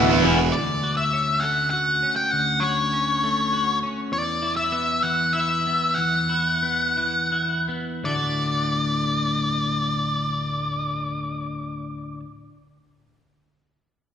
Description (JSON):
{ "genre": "post-rock", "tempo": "80-101 BPM", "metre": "3/4", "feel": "straight", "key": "D major", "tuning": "A4 = 440 Hz", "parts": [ { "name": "twelve-string electric guitar", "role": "arpeggios", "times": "0.0-12.3 s", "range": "D2 to F#4", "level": "-27 LUFS", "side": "left 2 dB", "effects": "none" }, { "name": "fuzz guitar", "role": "riff", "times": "0.0-0.5 s", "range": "B2 to E4", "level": "-23 LUFS", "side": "right 7 dB", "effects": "distortion" }, { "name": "fuzz picked electric bass", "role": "bass", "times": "0.0-0.5 s", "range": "D1 to E1", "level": "-24 LUFS", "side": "right 1 dB", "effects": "overdrive" }, { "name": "octave-fuzz lead guitar", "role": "melody", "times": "0.5-12.2 s", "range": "C#5 to G5", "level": "-23 LUFS", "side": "left 1 dB", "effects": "distortion" } ], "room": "wet recital hall reverb, RT60 1.8 s", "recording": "recorded in a church or concert hall", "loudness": "-21 LUFS", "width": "side -8 dB against mid", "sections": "0.6-8.1 A section; 8.1-12.6 B section", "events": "slowing down 4.1-8.1", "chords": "0.0 E5; 0.6 Dmaj7; 4.1 Esus2; 8.1 D", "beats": "| 0.55 1.15 1.74 | 2.34 2.94 3.53 | 4.13 4.74 5.35 | 5.98 6.64 7.32 | 8.05 8.80 9.55 | 10.30 11.05 11.80" }